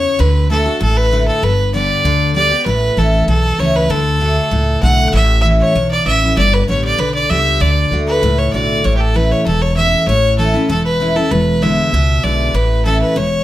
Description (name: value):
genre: bluegrass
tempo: 194 BPM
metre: 4/4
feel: straight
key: D major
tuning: A4 = 439 Hz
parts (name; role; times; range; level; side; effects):
- clear fiddle; melody; 0.0-13.4 s; G4 to F#5; -16 LUFS; equal; slapback echo
- picked steel-string acoustic guitar; accompaniment; 0.0-13.4 s; E2 to G4; -17 LUFS; left 1 dB; none
- upright bass; bass; 0.0-13.4 s; E1 to D2; -16 LUFS; equal; none
room: light reverb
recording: none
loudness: -12 LUFS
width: side -14 dB against mid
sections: 0.0-13.4 A section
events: none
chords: 0.2 D; 1.4 G; 2.7 A; 3.9 D; 5.1 A; 6.4 G; 7.6 D; 8.8 A; 11.3 E7; 12.5 A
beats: | 0.20 0.50 0.81 1.12 | 1.43 1.74 2.05 2.36 | 2.67 2.97 3.28 3.59 | 3.90 4.21 4.52 4.83 | 5.14 5.45 5.75 6.06 | 6.37 6.68 6.99 7.30 | 7.61 7.92 8.23 8.54 | 8.84 9.15 9.46 9.77 | 10.08 10.39 10.70 11.01 | 11.31 11.62 11.93 12.24 | 12.55 12.86 13.16